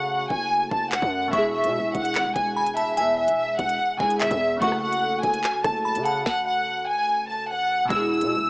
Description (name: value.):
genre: hip hop, drill.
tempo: 146 BPM.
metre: 4/4.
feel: half-time.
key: F# minor.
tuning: A4 = 439 Hz.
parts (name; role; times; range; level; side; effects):
warm studio violin section; melody; 0.0-8.5 s; E5 to E6; -22 LUFS; equal; cassette tape, tape echo.
glassy synth bell; second line; 0.0-6.3 s; G#5 to C#6; -28 LUFS; equal; chorus, cassette tape, tape echo.
glassy digital keys; accompaniment; 0.0-8.5 s; B2 to A4; -30 LUFS; equal; chorus, cassette tape.
distorted 808-style bass; bass; 0.0-8.5 s; E1 to C#3; -32 LUFS; equal; distortion.
drill drum kit; drums; 0.3-8.3 s; handclaps, hi-hat, kick drum, rim click, snare drum; -29 LUFS; equal; cassette tape.
room: light reverb.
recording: home recording on cassette, small speaker sound.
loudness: -21 LUFS.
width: side -30 dB against mid.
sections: 0.0-7.9 A section.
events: break 0.0-1.3.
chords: 0.0 F#m; 1.3 E; 4.6 F#m; 7.9 E.